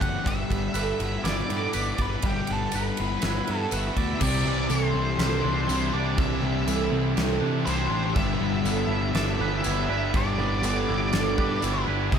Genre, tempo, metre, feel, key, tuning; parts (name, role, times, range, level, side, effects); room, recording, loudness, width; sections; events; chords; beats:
rock, shoegaze and dream pop; 121 BPM; 4/4; straight; C major; A4 = 440 Hz
octave-fuzz lead guitar; melody; 0.0-12.2 s; G4 to F#5; -31 LUFS; equal; distortion, digital delay
fingerpicked twelve-string acoustic guitar; arpeggios; 0.0-12.2 s; F#4 to B4; -35 LUFS; right 9 dB; wide subtle chorus, digital delay
thick fuzz guitar; riff; 0.0-12.2 s; C3 to D5; -31 LUFS; left 12 dB; distortion, lush chorus
twangy electric guitar; riff; 0.0-12.2 s; C3 to D5; -33 LUFS; right 12 dB; reverse reverb
fuzz picked electric bass; bass; 0.0-12.2 s; F#1 to C3; -28 LUFS; equal; overdrive
huge arena drum kit; drums; 0.0-12.2 s; crash cymbal, kick drum, ride cymbal, snare drum; -30 LUFS; equal
tambourine; percussion; 0.7-11.7 s; -38 LUFS; left 16 dB
cranked stack guitar; riff; 4.2-12.2 s; G2 to G4; -32 LUFS; equal; overdrive
small room ambience; -23 LUFS; side -7 dB against mid
0.0-4.2 A section; 4.2-12.2 B section
0.3 G6; 4.2 Cadd9; 8.2 G6
| 0.26 0.75 1.25 1.74 | 2.24 2.73 3.23 3.72 | 4.22 4.71 5.20 5.70 | 6.19 6.68 7.18 7.67 | 8.16 8.66 9.15 9.65 | 10.14 10.64 11.13 11.63 | 12.12